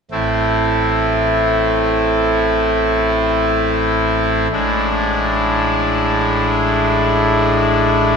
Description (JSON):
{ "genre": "classical, chorale-style piece for pipe organ", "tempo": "free time", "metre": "none", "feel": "none", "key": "A minor", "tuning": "A4 = 440 Hz", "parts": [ { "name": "pipe organ, trumpet", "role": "solo", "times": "0.1-8.2 s", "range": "A1 to E4", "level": "-14 LUFS", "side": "equal", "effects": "none" } ], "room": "wet cathedral reverb, RT60 5.5 s", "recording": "in a vast, echoing space", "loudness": "-14 LUFS", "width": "side -6 dB against mid", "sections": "0.1-8.2 A section", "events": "none", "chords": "0.1 Am; 4.5 E7/A", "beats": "free time" }